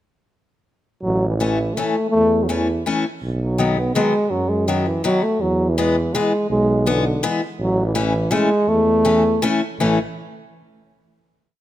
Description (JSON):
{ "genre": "alpine folk, alpine dance band", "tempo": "165 BPM", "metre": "3/4", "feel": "straight", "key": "A major", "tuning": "A4 = 440 Hz", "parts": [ { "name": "warm euphonium", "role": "melody", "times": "1.0-10.0 s", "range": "D3 to B3", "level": "-19 LUFS", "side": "equal", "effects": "none" }, { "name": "warm tuba", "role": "bass", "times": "1.0-10.0 s", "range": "A1 to F#2", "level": "-22 LUFS", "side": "right 2 dB", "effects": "none" }, { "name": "picked steel-string acoustic guitar", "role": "accompaniment", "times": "1.4-10.0 s", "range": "D#3 to C#4", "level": "-22 LUFS", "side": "left 4 dB", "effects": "none" } ], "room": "light reverb", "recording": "close, detailed microphones", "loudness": "-17 LUFS", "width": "side -13 dB against mid", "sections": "1.0-9.8 A section; 9.8-10.9 final chord", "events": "none", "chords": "1.0 A; 3.2 B; 5.4 E; 7.6 A" }